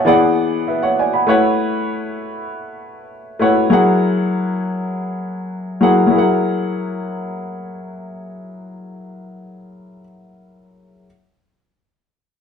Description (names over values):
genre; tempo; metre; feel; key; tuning
soul; 99 BPM; 4/4; straight; unclear; A4 = 440 Hz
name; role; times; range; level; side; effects
warm baby grand piano; accompaniment; 0.0-11.1 s; E3 to B5; -16 LUFS; left 1 dB; none
room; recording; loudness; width
moderate studio reverb, RT60 0.8 s; band playing live in one room; -15 LUFS; side -7 dB against mid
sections
0.0-6.1 A section; 6.1-8.5 B section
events
none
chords
0.1 E7; 1.3 A69; 3.7 F#7